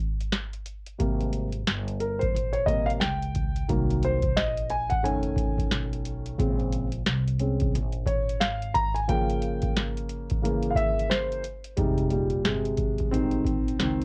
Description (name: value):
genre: hip hop, jazz-hop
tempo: 89 BPM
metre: 4/4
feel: swing 60% on 16ths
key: F minor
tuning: A4 = 439 Hz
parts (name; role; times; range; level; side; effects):
- booming analog drum machine; drums; 0.2-14.0 s; hi-hat, kick drum, snare drum; -30 LUFS; equal; cassette tape
- dark concert grand piano; accompaniment; 1.0-14.0 s; Bb2 to Bb5; -30 LUFS; equal; cassette tape, plate reverb
- upright bass; bass; 1.0-14.0 s; F1 to Db2; -33 LUFS; equal; none
room: light reverb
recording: home recording on cassette, faint mains hum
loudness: -27 LUFS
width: mono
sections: 0.0-11.8 A section; 11.8-14.0 B section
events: break 0.0-1.0; grand piano solo 0.0-11.8, 11.8-14.0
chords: 0.0 N.C.; 1.0 Abmaj9; 3.7 Cm7b5; 5.0 F7alt; 6.4 Bbm7; 9.1 Gm7b5; 10.4 Dbm6; 11.8 Fm9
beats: 0.32 | 1.00 1.67 2.34 3.02 | 3.69 4.37 5.04 5.71 | 6.39 7.06 7.74 8.41 | 9.09 9.76 10.43 11.11 | 11.78 12.46 13.13 13.80